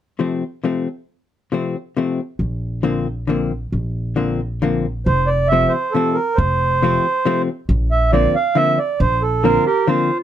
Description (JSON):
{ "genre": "musette waltz", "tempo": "137 BPM", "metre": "3/4", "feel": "straight", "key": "F major", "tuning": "A4 = 435 Hz", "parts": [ { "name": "hollow-body jazz guitar", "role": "accompaniment", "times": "0.2-10.1 s", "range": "C3 to C4", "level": "-19 LUFS", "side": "left 4 dB", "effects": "none" }, { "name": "upright bass", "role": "bass", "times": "2.4-9.6 s", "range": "F1 to Bb1", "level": "-20 LUFS", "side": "equal", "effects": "none" }, { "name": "mellow accordion", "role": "melody", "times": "5.1-10.2 s", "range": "A4 to F5", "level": "-17 LUFS", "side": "right 4 dB", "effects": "none" }, { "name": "warm clarinet", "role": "second line", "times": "9.4-10.2 s", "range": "F4 to G4", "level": "-22 LUFS", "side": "right 2 dB", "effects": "none" } ], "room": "light reverb", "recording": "dark, warm production", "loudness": "-16 LUFS", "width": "side -10 dB against mid", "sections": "0.0-5.1 A section; 5.1-10.2 B section", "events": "none", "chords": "0.0 F; 2.4 Bbadd9; 5.1 F; 7.7 Bbadd9" }